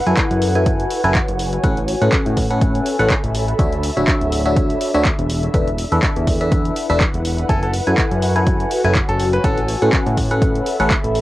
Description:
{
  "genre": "piano house",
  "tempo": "123 BPM",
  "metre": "4/4",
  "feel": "swing 56% on 16ths",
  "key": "F# minor",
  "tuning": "A4 = 438 Hz",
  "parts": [
    { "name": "ethereal airy pad", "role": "texture", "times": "0.0-11.2 s", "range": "D4 to B5", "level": "-24 LUFS", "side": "equal", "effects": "ensemble chorus, built-in reverb, sidechain pumping" },
    { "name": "barking FM electric piano", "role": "riff", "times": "0.1-10.9 s", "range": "C#4 to G#5", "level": "-20 LUFS", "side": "left 1 dB", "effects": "phaser, sidechain pumping, analog delay" },
    { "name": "fat analog bass", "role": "bass", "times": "0.1-11.2 s", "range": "D1 to A2", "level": "-20 LUFS", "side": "equal", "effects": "sidechain pumping" },
    { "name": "punchy analog drum machine", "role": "drums", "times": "0.1-11.2 s", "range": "handclaps, hi-hat", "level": "-24 LUFS", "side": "equal", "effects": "overdrive, cassette tape" },
    { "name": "electronic kick drum", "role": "drums", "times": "0.2-11.0 s", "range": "none", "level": "-19 LUFS", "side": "equal", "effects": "overdrive, cassette tape" },
    { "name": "bright baby grand piano", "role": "melody", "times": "7.5-9.8 s", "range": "A4 to B4", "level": "-25 LUFS", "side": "equal", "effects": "cassette tape, analog delay" }
  ],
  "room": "light reverb",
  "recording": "home recording on cassette",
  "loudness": "-15 LUFS",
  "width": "side -16 dB against mid",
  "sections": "0.0-11.2 A section",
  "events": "none",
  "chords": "0.0 F#m11; 1.6 A69; 3.6 Dmaj9; 5.3 E7sus4; 7.5 F#m11; 9.4 A69"
}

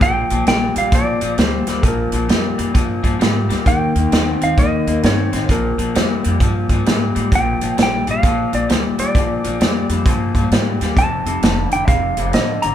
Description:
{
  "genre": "electric blues shuffle",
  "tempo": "131 BPM",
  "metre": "4/4",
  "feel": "swing 64% on 8ths",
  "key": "Bb major",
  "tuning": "A4 = 440 Hz",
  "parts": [
    { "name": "clean lap steel guitar", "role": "melody", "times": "0.0-12.7 s", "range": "A4 to Bb5", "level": "-21 LUFS", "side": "right 2 dB", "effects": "none" },
    { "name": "electric guitar through a small old amp", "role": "riff", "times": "0.0-12.7 s", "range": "F2 to C4", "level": "-20 LUFS", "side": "left 4 dB", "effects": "none" },
    { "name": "upright bass", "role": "bass", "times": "0.0-12.7 s", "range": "F1 to Ab2", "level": "-22 LUFS", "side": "right 1 dB", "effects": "none" },
    { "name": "natural country drum kit", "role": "drums", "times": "0.0-12.7 s", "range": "hi-hat, kick drum, snare drum", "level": "-18 LUFS", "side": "right 1 dB", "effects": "none" }
  ],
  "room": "moderate large studio reverb, RT60 1.4 s",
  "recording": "band playing live in one room",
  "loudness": "-14 LUFS",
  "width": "side -10 dB against mid",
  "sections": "0.0-12.7 A section",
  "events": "none",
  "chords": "0.0 Bb; 3.7 Eb7; 5.5 Bb; 11.0 F"
}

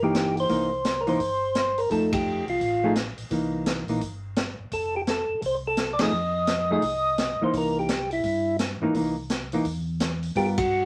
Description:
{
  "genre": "soul jazz organ trio",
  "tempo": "170 BPM",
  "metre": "4/4",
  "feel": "swing 63% on 8ths",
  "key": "unclear",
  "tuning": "A4 = 441 Hz",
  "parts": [
    { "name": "percussive tonewheel organ", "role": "melody", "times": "0.0-10.9 s", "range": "E4 to Eb5", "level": "-27 LUFS", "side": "equal", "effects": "slow rotary speaker" },
    { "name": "hollow-body jazz guitar", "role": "accompaniment", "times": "0.0-10.6 s", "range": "E3 to A#4", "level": "-28 LUFS", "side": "equal", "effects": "none" },
    { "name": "mellow tonewheel organ", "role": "bass", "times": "0.0-10.9 s", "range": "F1 to G2", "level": "-37 LUFS", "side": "equal", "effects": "chorus vibrato" },
    { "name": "swinging big-band drum kit", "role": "drums", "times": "0.1-10.6 s", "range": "hi-hat, kick drum, ride cymbal, snare drum", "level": "-32 LUFS", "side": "equal", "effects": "none" }
  ],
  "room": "moderate studio ambience, RT60 0.5 s",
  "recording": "vinyl crackle",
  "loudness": "-26 LUFS",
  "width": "mono",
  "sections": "0.0-10.9 A section",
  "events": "band accent 2.1, 5.9, 10.5",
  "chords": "0.0 C7#9; 1.9 F7; 3.3 C7#9; 4.7 F7; 7.5 C7#9"
}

